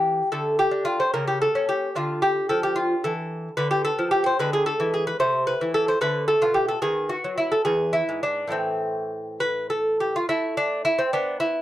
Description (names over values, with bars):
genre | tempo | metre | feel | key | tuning
classical, baroque-style dance for lute | 73 BPM (dotted quarters) | 6/8 | rubato | D minor, A minor from 3.6 s | A4 = 439 Hz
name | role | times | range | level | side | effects
lute | solo | 0.0-11.6 s | E2 to C5 | -21 LUFS | equal | none
room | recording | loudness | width
light reverb | dark, warm production | -21 LUFS | side -14 dB against mid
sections
0.0-10.3 A section; 10.3-11.6 B section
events
none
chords
0.3 D5; 1.1 A7b9/C#; 2.0 Dm; 3.6 Bdim/D; 4.4 E7/D; 5.2 Am/C; 6.0 Bm7b5; 6.8 B/D#; 7.7 E; 8.5 Am; 10.3 N.C.